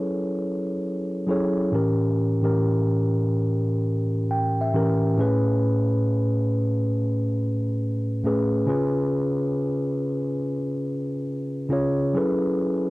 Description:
hip hop; 69 BPM; 4/4; swing 66% on 16ths; A major; A4 = 440 Hz
mellow tine electric piano; solo; 0.0-12.9 s; A2 to G5; -21 LUFS; equal; low-pass filter
light reverb; cassette tape; -21 LUFS; side -20 dB against mid
0.0-5.2 A section; 5.2-12.9 B section
filter sweep on tine electric piano 0.0-5.2
0.0 F#m11; 1.7 A7b9; 5.2 Amaj7; 8.7 C#7; 12.1 F#m11
0.84 | 1.71 2.58 3.45 4.32 | 5.19 6.06 6.93 7.80 | 8.66 9.54 10.40 11.27 | 12.14

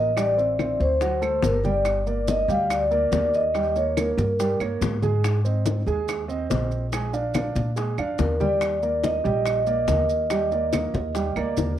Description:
Afro-Cuban jazz; 142 BPM; 4/4; straight; Eb major; A4 = 442 Hz
vibraphone with soft mallets; melody; 0.0-4.6, 8.2-11.5 s; Bb4 to F5; -23 LUFS; equal; cassette tape
warm grand piano; accompaniment; 0.0-11.7 s; F#3 to Ab5; -28 LUFS; right 5 dB
upright bass; bass; 0.0-11.8 s; G1 to Bb2; -27 LUFS; equal
bongos; percussion; 0.2-11.7 s; -32 LUFS; left 9 dB
claves; percussion; 0.2-11.6 s; -36 LUFS; right 8 dB
congas; percussion; 0.2-11.8 s; -31 LUFS; left 1 dB
maracas; percussion; 0.2-11.8 s; -41 LUFS; right 9 dB
wet studio reverb, RT60 0.6 s; home recording on cassette; -21 LUFS; side -11 dB against mid
0.0-11.8 A section
drum fill 11.6
0.2 Am7; 1.0 D7; 1.9 Gm; 3.5 Eb7; 5.2 Abadd9; 6.9 Bb6; 8.6 Ebmaj7
| 0.17 0.59 1.01 1.44 | 1.86 2.28 2.70 3.12 | 3.55 3.97 4.39 4.81 | 5.24 5.66 6.08 6.50 | 6.92 7.35 7.77 8.19 | 8.62 9.04 9.46 9.88 | 10.30 10.73 11.15 11.57

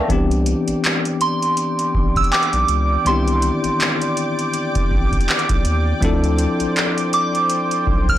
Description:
contemporary R&B; 81 BPM; 4/4; swing 58% on 16ths; C major; A4 = 439 Hz
bell-like tine electric piano; accompaniment; 0.0-8.2 s; Eb3 to A5; -22 LUFS; left 3 dB; fast stereo tremolo
lush unison pad; sustained chords; 0.1-8.2 s; C5 to D6; -26 LUFS; right 1 dB; chorus
saturated sub bass; bass; 0.1-8.2 s; A1 to Eb2; -20 LUFS; equal
booming analog drum machine; drums; 0.1-8.2 s; handclaps, hi-hat, kick drum; -21 LUFS; equal
soft synth bell; melody; 1.2-8.2 s; C6 to F6; -20 LUFS; right 2 dB; chorus, tape echo
soft round pluck; texture; 2.3-4.7 s; G5; -31 LUFS; right 2 dB; chorus, tape echo
digital ambience; blown-out, overdriven recording, overdrive; -16 LUFS; side -12 dB against mid
0.0-8.2 A section
0.1 Cmaj9; 6.0 Dm9
| 0.10 0.84 1.58 2.32 | 3.06 3.80 4.54 5.28 | 6.02 6.76 7.50

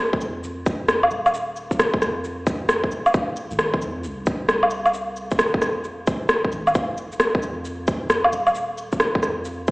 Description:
future garage; 133 BPM; 4/4; swing 64% on 16ths; F minor; A4 = 440 Hz
soft 808-style bass; bass; 0.0-9.7 s; Eb1 to F2; -34 LUFS; equal; sidechain pumping
electronic kick drum; drums; 0.1-9.7 s; -23 LUFS; equal; overdrive
electronic cabasa, shaker, rim click and woodblock; drums; 0.2-9.7 s; -21 LUFS; equal; overdrive
moderate huge ambient reverb, RT60 7.9 s; played on a big sound system in a bare room, cassette tape, large studio reverb, small speaker sound; -20 LUFS; side -24 dB against mid
0.0-9.7 A section
0.44 0.89 | 1.34 1.79 2.24 2.69 | 3.14 3.59 4.04 4.50 | 4.95 5.40 5.85 6.30 | 6.75 7.20 7.65 8.11 | 8.56 9.01 9.46

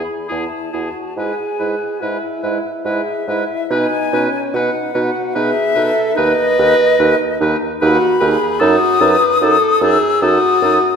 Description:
classical, slow romantic movement for wind quintet; 73 BPM; 3/4; uneven beats, rubato; A4 = 439 Hz
concert flute; melody; 0.0-11.0 s; D#5 to E6; -18 LUFS; left 6 dB
clear oboe; second line; 0.0-10.8 s; G#4 to B4; -24 LUFS; left 1 dB
clear French horn; accompaniment; 0.0-11.0 s; C#4 to B4; -19 LUFS; right 1 dB
mellow clarinet; accompaniment; 0.0-10.8 s; D#4 to E4; -23 LUFS; right 3 dB
mellow bassoon; bass; 0.0-10.8 s; D#2 to B2; -20 LUFS; right 3 dB
wet scoring stage reverb, RT60 1.6 s; recorded in a church or concert hall; -13 LUFS; side -6 dB against mid
0.0-11.0 A section
0.0 E; 1.2 E/G#; 3.7 B; 6.2 B/D#; 8.6 D#dim/F#
0.29 | 1.17 2.01 2.85 | 3.70 4.53 5.35 | 6.16 6.99 7.81 | 8.61 9.41 10.23

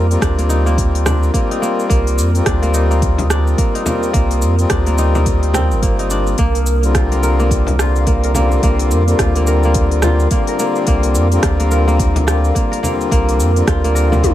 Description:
organic downtempo; 107 BPM; 4/4; swing 60% on 16ths; A4 = 439 Hz
hand-pumped harmonium; accompaniment; 0.0-14.3 s; D3 to Bb4; -19 LUFS; left 4 dB; sidechain pumping, tape echo
granular cloud pad; sustained chords; 0.0-14.3 s; Bb4 to Eb6; -27 LUFS; equal; built-in reverb, sidechain pumping
kora; arpeggios; 0.0-14.3 s; Bb3 to Bb4; -22 LUFS; right 1 dB; tape echo
warm sub bass; bass; 0.0-14.3 s; G1 to F2; -15 LUFS; right 1 dB
organic electronic drum kit; drums; 0.1-14.3 s; hi-hat, rim click, shaker, toms; -22 LUFS; equal
electronic kick drum; drums; 0.2-14.3 s; -18 LUFS; equal
frame drum; percussion; 1.1-14.2 s; -24 LUFS; left 3 dB
little or no reverb; -12 LUFS; side -13 dB against mid
0.0-14.3 A section
0.0 Cm9; 6.4 Bb/C
0.22 0.78 1.34 | 1.90 2.46 3.02 3.58 | 4.14 4.70 5.26 5.82 | 6.38 6.95 7.51 8.07 | 8.63 9.19 9.75 10.31 | 10.87 11.43 11.99 12.55 | 13.11 13.68 14.23

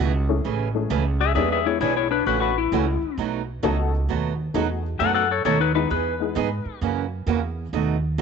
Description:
country, western swing; 132 BPM; 4/4; swing 66% on 8ths; E major; A4 = 440 Hz
clean lap steel guitar; second line; 0.0-6.8 s; D4 to F#5; -22 LUFS; left 10 dB
picked old ladder-braced acoustic guitar; accompaniment; 0.0-8.2 s; B2 to G#4; -27 LUFS; right 12 dB
upright bass; bass; 0.0-8.2 s; A1 to G#2; -25 LUFS; right 2 dB
honky-tonk upright piano; accompaniment; 0.3-6.4 s; G3 to A4; -27 LUFS; left 9 dB
light reverb, small room reverb; 1960s-style stereo with parts hard left and right, nothing above 7.9 kHz; -20 LUFS; side -6 dB against mid
0.0-8.2 A section
electric slide guitar solo 0.0-8.2
0.4 Amaj7; 1.4 E7; 2.3 A6; 3.2 B7; 5.9 Emaj7; 6.8 F#7
0.45 0.90 | 1.36 1.81 2.27 2.72 | 3.18 3.63 4.09 4.54 | 5.00 5.45 5.91 6.36 | 6.82 7.27 7.73 8.18

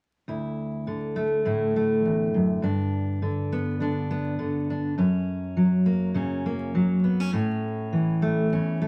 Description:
folk; 102 BPM; 4/4; straight; D major; A4 = 438 Hz
fingerpicked steel-string acoustic guitar; accompaniment; 0.3-8.9 s; D2 to E4; -25 LUFS; equal
wet studio reverb, RT60 0.5 s; vinyl crackle; -25 LUFS; mono
0.3-8.9 A section
0.3 Dsus2; 2.6 G; 5.0 F#; 7.3 A
| 0.27 0.85 1.44 2.03 | 2.62 3.21 3.79 4.38 | 4.97 5.56 6.15 6.73 | 7.32 7.91 8.50

